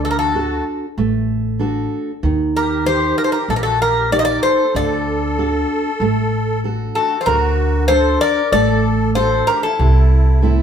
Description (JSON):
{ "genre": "greek folk, Greek bouzouki band", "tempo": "95 BPM", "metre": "4/4", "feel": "straight", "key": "D phrygian dominant", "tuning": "A4 = 440 Hz", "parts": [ { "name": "Greek bouzouki", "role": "melody", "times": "0.0-10.5 s", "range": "A4 to Eb5", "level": "-17 LUFS", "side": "left 2 dB", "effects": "none" }, { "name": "fingerpicked steel-string acoustic guitar", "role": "accompaniment", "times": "0.0-10.6 s", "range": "C3 to Bb4", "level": "-21 LUFS", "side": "right 4 dB", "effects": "none" }, { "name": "upright bass", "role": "bass", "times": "0.0-10.6 s", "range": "A1 to Eb2", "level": "-18 LUFS", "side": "equal", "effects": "none" }, { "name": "musette accordion", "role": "second line", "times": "0.1-10.5 s", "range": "Eb4 to C5", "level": "-24 LUFS", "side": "equal", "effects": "none" } ], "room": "wet studio reverb, RT60 0.8 s", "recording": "band playing live in one room", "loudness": "-14 LUFS", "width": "side -8 dB against mid", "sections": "0.0-7.3 A section; 7.3-10.6 B section", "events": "none", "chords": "0.0 D; 2.2 Eb; 4.8 D; 9.8 C6", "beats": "0.34 0.97 1.60 | 2.23 2.86 3.49 4.12 | 4.75 5.38 6.01 6.64 | 7.27 7.90 8.53 9.16 | 9.79 10.42" }